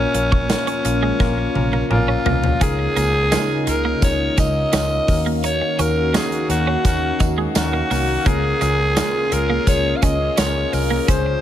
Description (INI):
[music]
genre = 1980s-style pop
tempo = 85 BPM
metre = 4/4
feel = straight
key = unclear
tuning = A4 = 443 Hz
[part]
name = raspy alto saxophone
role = melody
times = 0.0-11.4 s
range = Db4 to F5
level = -22 LUFS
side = equal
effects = ping-pong delay
[part]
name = tine electric piano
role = accompaniment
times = 0.0-11.4 s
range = Bb2 to Db5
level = -24 LUFS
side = moving between left 8 dB and left 1 dB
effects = auto-pan
[part]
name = phased analog pad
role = sustained chords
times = 0.0-11.4 s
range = Db3 to F5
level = -28 LUFS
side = right 1 dB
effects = phaser, chorus
[part]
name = vintage muted fingered electric bass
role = bass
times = 0.0-11.3 s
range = Bb1 to Eb2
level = -23 LUFS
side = equal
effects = none
[part]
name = twelve-string electric guitar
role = riff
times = 0.1-11.3 s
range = Ab3 to Eb4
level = -28 LUFS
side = right 6 dB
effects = analog chorus, ping-pong delay
[part]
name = big rock drum kit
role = drums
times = 0.1-11.2 s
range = hi-hat, kick drum, snare drum, toms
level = -21 LUFS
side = equal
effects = none
[part]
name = tambourine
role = percussion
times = 2.6-11.2 s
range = none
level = -37 LUFS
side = right 7 dB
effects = none
[sound]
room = light reverb, studio ambience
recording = none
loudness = -16 LUFS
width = side -11 dB against mid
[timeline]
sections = 0.0-2.6 A section; 2.6-11.4 B section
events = drum fill 1.2-2.6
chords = 0.0 Bbm; 2.6 Db69; 5.1 Ebm7; 8.3 Bbm7/Db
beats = 0.50 1.20 1.91 | 2.61 3.32 4.03 4.73 | 5.44 6.14 6.85 7.55 | 8.26 8.97 9.67 10.38 | 11.08